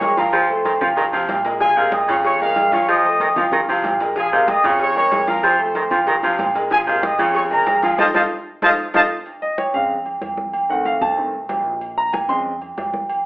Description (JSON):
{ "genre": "latin, salsa", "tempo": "188 BPM", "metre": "4/4", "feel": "straight", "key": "Bb minor", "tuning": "A4 = 438 Hz", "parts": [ { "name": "mellow trumpet section", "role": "melody", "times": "0.0-9.0 s", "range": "Ab4 to Eb6", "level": "-18 LUFS", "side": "equal", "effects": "none" }, { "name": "bright baby grand piano", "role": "accompaniment", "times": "0.0-12.5 s", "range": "Db3 to C6", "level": "-22 LUFS", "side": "equal", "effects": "none" }, { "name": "upright bass", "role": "bass", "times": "0.0-13.3 s", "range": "Bb1 to F2", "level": "-39 LUFS", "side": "equal", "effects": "none" }, { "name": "congas", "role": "percussion", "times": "0.0-13.3 s", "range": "none", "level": "-32 LUFS", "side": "equal", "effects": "none" }, { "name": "cowbell", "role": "percussion", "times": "0.0-9.0 s", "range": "none", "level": "-30 LUFS", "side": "left 2 dB", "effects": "none" }, { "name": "timbales and agogo bells", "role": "percussion", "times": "0.0-13.3 s", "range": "none", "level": "-21 LUFS", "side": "right 1 dB", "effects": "none" }, { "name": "clear baritone saxophone", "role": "second line", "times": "0.3-9.0 s", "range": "C3 to F3", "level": "-20 LUFS", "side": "right 1 dB", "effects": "none" } ], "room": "wet large studio reverb, RT60 0.8 s", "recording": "band playing live in one room, telephone sound", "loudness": "-16 LUFS", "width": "side -20 dB against mid", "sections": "0.0-9.3 A section; 9.3-13.3 B section", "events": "drum fill 8.0-9.3; band accent 8.0-9.3; grand piano solo 9.3-13.3", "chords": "0.3 F; 1.6 Bbm7; 2.9 F7; 4.2 Bbm7; 5.4 F; 6.7 Bbm7; 8.0 F7; 9.3 Fm7; 10.5 F7; 11.8 Bbm7" }